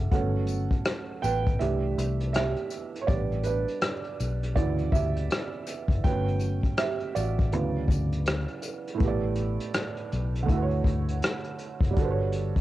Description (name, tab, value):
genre	lo-fi hip hop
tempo	81 BPM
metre	4/4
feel	swing 60% on 16ths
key	D major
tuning	A4 = 438 Hz
part	dark upright piano	accompaniment	0.0-12.6 s	A2 to G5	-30 LUFS	right 5 dB	low-pass filter, cassette tape
part	vintage muted fingered electric bass	bass	0.0-12.5 s	F#1 to D2	-28 LUFS	left 1 dB	none
part	vintage brush drum kit	drums	0.1-12.6 s	hi-hat, kick drum, rim click	-28 LUFS	left 1 dB	cassette tape
part	tambourine	percussion	0.5-8.8 s	none	-46 LUFS	left 10 dB	none
room	light reverb, small room ambience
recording	home recording on cassette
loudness	-25 LUFS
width	side -15 dB against mid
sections	0.0-9.0 A section; 9.0-12.6 A section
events	upright piano solo 0.0-9.0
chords	0.1 Gmaj9#11; 1.6 C69; 3.1 A9sus4; 4.6 Dmaj9; 6.0 Gmaj9#11; 7.5 Dmaj13; 9.0 A9sus4; 10.5 Dmaj9; 12.0 Gmaj9#11